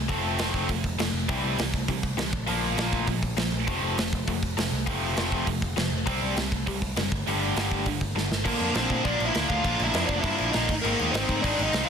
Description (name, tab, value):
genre	punk rock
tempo	201 BPM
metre	4/4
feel	straight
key	unclear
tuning	A4 = 440 Hz
part	picked electric bass	bass	0.0-11.8 s	F1 to Bb2	-31 LUFS	equal	none
part	overdriven electric guitar	riff	0.1-11.9 s	G2 to Eb4	-31 LUFS	left 14 dB	none
part	tight distorted guitar	riff	0.1-11.9 s	F2 to Eb4	-30 LUFS	right 15 dB	distortion
part	big rock drum kit	drums	0.1-11.8 s	crash cymbal, hi-hat, kick drum, snare drum	-28 LUFS	equal	none
part	dark smooth lead guitar	melody	8.5-11.9 s	Bb3 to F5	-28 LUFS	equal	overdrive
room	little or no reverb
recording	dense, heavily limited modern master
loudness	-24 LUFS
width	side -7 dB against mid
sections	0.0-8.5 A section; 8.5-11.9 B section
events	drum fill 8.2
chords	0.0 F; 1.3 C; 2.3 Bb5; 3.7 F; 6.1 C5; 7.1 G5; 8.5 Bb; 10.7 Ab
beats	| 0.09 0.39 0.69 0.99 | 1.29 1.58 1.88 2.18 | 2.48 2.78 3.08 3.38 | 3.67 3.97 4.27 4.57 | 4.87 5.17 5.47 5.77 | 6.06 6.36 6.66 6.96 | 7.26 7.56 7.86 8.15 | 8.45 8.75 9.05 9.35 | 9.65 9.95 10.24 10.54 | 10.84 11.14 11.44 11.74